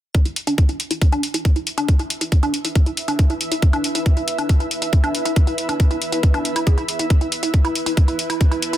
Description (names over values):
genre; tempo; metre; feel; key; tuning
psychedelic trance; 138 BPM; 4/4; straight; unclear; A4 = 439 Hz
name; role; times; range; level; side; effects
electronic hi-hat; drums; 0.1-8.8 s; none; -25 LUFS; left 1 dB; none
electronic kick drum; drums; 0.1-8.5 s; none; -15 LUFS; equal; none
granular cloud pad; texture; 2.1-8.8 s; E4 to A5; -27 LUFS; right 1 dB; built-in reverb, sidechain pumping
woody wave-folded pluck; riff; 0.3-8.8 s; D4 to G#4; -24 LUFS; equal; chorus, auto-pan, sidechain pumping, tape echo
room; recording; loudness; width
digital ambience; dense, heavily limited modern master; -16 LUFS; side -13 dB against mid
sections
0.1-8.8 A section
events
none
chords
0.1 E5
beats
| 0.15 0.58 1.02 1.45 | 1.89 2.32 2.75 3.19 | 3.62 4.06 4.49 4.93 | 5.36 5.80 6.23 6.67 | 7.10 7.54 7.97 8.41